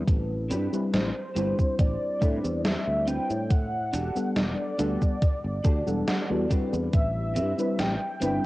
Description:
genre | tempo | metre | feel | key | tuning
vaporwave | 70 BPM | 4/4 | straight | A dorian | A4 = 440 Hz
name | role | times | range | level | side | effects
mellow FM electric piano | accompaniment | 0.0-8.5 s | G3 to F#5 | -30 LUFS | left 1 dB | analog chorus, vintage 12-bit sampler grit, cassette tape, analog delay
sustaining fretless electric bass | bass | 0.1-8.4 s | E1 to A2 | -30 LUFS | equal | analog chorus
electronic kick drum | drums | 0.1-7.1 s | none | -24 LUFS | equal | none
gated 80s digital drum machine | drums | 0.1-8.4 s | cabasa, hi-hat, snare drum | -30 LUFS | equal | gated reverb, gated reverb snare
electric guitar at the edge of break-up | riff | 0.5-8.4 s | C4 to A5 | -36 LUFS | right 2 dB | analog chorus, cassette tape, analog delay
warm velvety synth lead | melody | 0.9-8.5 s | C5 to G5 | -32 LUFS | equal | chorus, tape echo
room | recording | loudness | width
light reverb, digital ambience | home recording on cassette | -24 LUFS | side -18 dB against mid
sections
0.0-8.5 A section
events
clean electric guitar fill 5.2-6.9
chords
0.1 Am11; 3.5 Em11; 6.9 Am11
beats
| 0.08 0.93 1.79 2.65 | 3.50 4.36 5.22 6.08 | 6.93 7.79

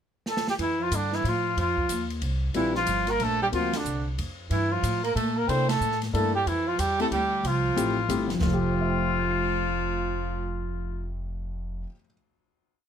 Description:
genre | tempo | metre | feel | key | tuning
jazz, small-group swing and bop | 184 BPM | 3/4 | swing 63% on 8ths | F major | A4 = 440 Hz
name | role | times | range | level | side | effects
mellow trumpet | melody | 0.3-11.1 s | D4 to C5 | -28 LUFS | left 2 dB | none
open jazz drum kit | drums | 0.3-8.5 s | hi-hat, kick drum, ride cymbal, snare drum | -35 LUFS | equal | none
warm baritone saxophone | second line | 0.6-11.1 s | D3 to C4 | -31 LUFS | right 8 dB | none
upright bass | bass | 0.6-11.8 s | F1 to C3 | -30 LUFS | equal | none
warm concert grand piano | accompaniment | 2.5-12.1 s | F2 to C7 | -30 LUFS | left 4 dB | none
room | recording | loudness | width
light reverb | none | -24 LUFS | side -8 dB against mid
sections
0.0-0.6 pickup bar; 0.6-8.4 A section; 8.4-10.4 final chord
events
drum fill 0.3-0.6; band accent 3.7, 5.6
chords
0.0 N.C.; 0.6 Fadd9; 1.6 F5; 2.5 Bb69; 3.5 D7alt; 4.5 Gm9; 5.5 C13; 6.5 Fmaj9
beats
0.26 | 0.58 0.91 1.24 | 1.56 1.89 2.22 | 2.55 2.87 3.20 | 3.53 3.85 4.18 | 4.50 4.83 5.16 | 5.48 5.81 6.13 | 6.46 6.78 7.11 | 7.43 7.76 8.09 | 8.41 8.74 9.06 | 9.39 9.72 10.04

